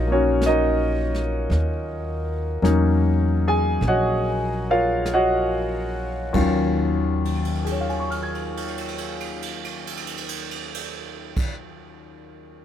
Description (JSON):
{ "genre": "jazz ballad", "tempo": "45-56 BPM", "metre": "4/4", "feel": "swing 69% on 8ths", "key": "Eb minor", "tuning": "A4 = 442 Hz", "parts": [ { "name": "clear grand piano", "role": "accompaniment", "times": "0.0-12.6 s", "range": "Eb2 to Ab6", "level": "-23 LUFS", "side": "left 2 dB", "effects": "none" }, { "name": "upright bass", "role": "bass", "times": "0.0-11.5 s", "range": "Bb1 to Fb2", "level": "-25 LUFS", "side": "equal", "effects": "none" }, { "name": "jazz brush drum kit", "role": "drums", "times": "0.4-11.6 s", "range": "brushed snare drum, crash cymbal, hi-hat, kick drum, ride cymbal, snare drum", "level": "-30 LUFS", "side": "right 3 dB", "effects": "none" } ], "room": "little or no reverb", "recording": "close, detailed microphones", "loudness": "-20 LUFS", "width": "side -10 dB against mid", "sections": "0.0-6.3 A section; 6.3-11.6 B section", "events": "slowing down 0.0-6.3; drum fill 7.0-11.2", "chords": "0.0 Ebm9", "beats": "0.41 | 1.50 2.63 3.81 5.04 | 6.34 7.66 8.96 10.28" }